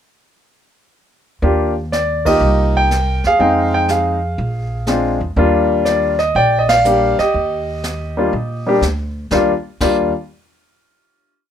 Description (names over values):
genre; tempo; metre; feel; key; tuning
jazz piano trio; 122 BPM; 4/4; swing 68% on 8ths; Eb major; A4 = 440 Hz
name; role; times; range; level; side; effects
clear concert grand piano; melody; 1.4-10.1 s; G3 to G5; -14 LUFS; equal; none
upright bass; bass; 1.4-10.1 s; Bb1 to Bb2; -20 LUFS; equal; none
jazz brush drum kit; drums; 1.4-10.0 s; brushed snare drum, crash cymbal, hi-hat, kick drum, ride cymbal, snare drum; -26 LUFS; left 1 dB; none
room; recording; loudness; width
light reverb; minimal, uncompressed stereo recording; -14 LUFS; side -9 dB against mid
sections
1.4-9.3 A section; 9.3-11.3 final chord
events
band accent 2.2, 6.6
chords
1.4 Ebmaj9; 2.4 Cm7; 3.4 Fm7; 4.4 Bb9; 5.4 Ebmaj9